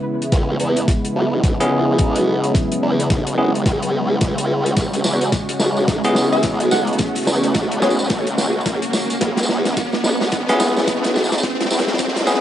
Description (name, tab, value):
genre	glitch hop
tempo	108 BPM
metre	4/4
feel	swing 60% on 16ths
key	C# minor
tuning	A4 = 440 Hz
part	warm analog pad	sustained chords	0.0-12.4 s	C#3 to F#4	-24 LUFS	equal	chorus, sidechain pumping
part	riser	sound effects	0.2-12.4 s	none	-26 LUFS	right 1 dB	none
part	warm soul drum kit	drums	0.2-12.4 s	hi-hat, snare drum, tambourine	-22 LUFS	equal	small room ambience
part	formant-sweep wobble bass	bass	0.3-12.4 s	G#1 to E2	-21 LUFS	equal	chorus, high-pass filter
part	electronic kick drum	drums	0.3-12.1 s	none	-20 LUFS	equal	small room ambience
part	bell-like tine electric piano	stabs	1.6-12.4 s	B3 to G#4	-21 LUFS	equal	sidechain pumping, low-pass filter, analog delay
part	woody wave-folded pluck	melody	6.3-8.4 s	C#5 to F#5	-25 LUFS	left 1 dB	wide subtle chorus, analog delay
room	light reverb, small room reverb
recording	dry, gritty hardware recording, high-pass filter, nothing above 10.9 kHz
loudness	-16 LUFS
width	side -11 dB against mid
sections	0.0-12.4 A section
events	build-up 0.0-12.4; drum fill 0.0-12.4; filter sweep 0.0-12.4; riser 0.2-12.4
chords	0.0 C#m7